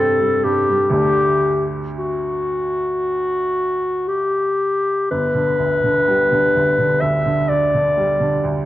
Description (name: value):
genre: classical, romantic duo for clarinet and grand piano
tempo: 56-66 BPM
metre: 4/4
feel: rubato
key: G major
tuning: A4 = 439 Hz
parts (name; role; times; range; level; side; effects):
- warm clarinet; melody; 0.0-8.6 s; F#4 to E5; -17 LUFS; left 1 dB; none
- bright baby grand piano; accompaniment; 0.0-8.7 s; G1 to D4; -22 LUFS; right 3 dB; none
room: moderate scoring stage reverb, RT60 1.7 s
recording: worn, warbling old tape, cassette tape, warbly pitch drift, faint mains hum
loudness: -16 LUFS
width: side -14 dB against mid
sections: 0.0-8.7 A section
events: none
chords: 0.0 C5; 0.9 D; 5.1 G